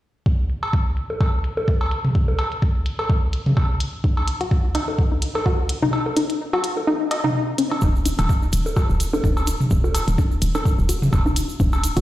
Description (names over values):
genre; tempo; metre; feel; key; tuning
minimal techno; 127 BPM; 4/4; swing 56% on 16ths; Eb minor; A4 = 439 Hz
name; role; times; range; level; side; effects
electronic kick drum; drums; 0.3-11.7 s; none; -20 LUFS; equal; studio reverb
electronic hi-hat; drums; 0.5-12.0 s; none; -32 LUFS; left 1 dB; low-pass filter on hats, studio reverb
electronic cowbell, bongos and toms; percussion; 0.6-11.8 s; none; -25 LUFS; equal; studio reverb, ping-pong delay
hollow square pluck; riff; 4.0-12.0 s; Db4 to Eb5; -24 LUFS; left 1 dB; chorus, sidechain pumping, tape echo
hollow knocking FM bass; bass; 7.8-12.0 s; Eb1; -23 LUFS; equal; sidechain pumping
egg shaker; percussion; 7.8-12.0 s; none; -36 LUFS; right 4 dB; none
room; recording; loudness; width
light reverb, digital ambience; played on a big sound system in a bare room, stone room reverb; -18 LUFS; side -15 dB against mid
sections
0.3-7.8 A section; 7.8-12.0 B section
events
kick drops out 5.9-7.8; filter sweep on synth arpeggio sound 7.8-12.0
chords
0.3 Ebm; 7.8 N.C.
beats
| 0.26 0.73 1.21 1.68 | 2.15 2.62 3.10 3.57 | 4.04 4.51 4.99 5.46 | 5.93 6.40 6.88 7.35 | 7.82 8.29 8.76 9.24 | 9.71 10.18 10.65 11.13 | 11.60